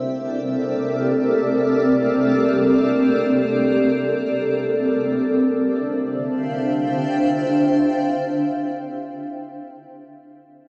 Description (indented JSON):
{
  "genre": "ambient",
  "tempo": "free time",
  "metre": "none",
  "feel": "none",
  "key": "D minor",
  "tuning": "A4 = 439 Hz",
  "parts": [
    { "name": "granular cloud pad", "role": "sustained chords", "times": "0.0-9.3 s", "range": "C4 to G5", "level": "-20 LUFS", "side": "equal", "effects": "built-in reverb" }
  ],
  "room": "wet plate reverb, RT60 3.7 s",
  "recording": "none",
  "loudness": "-20 LUFS",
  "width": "mono",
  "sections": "0.0-5.3 A section; 5.3-8.6 B section",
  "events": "none",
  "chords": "0.0 C13; 5.3 Dm11"
}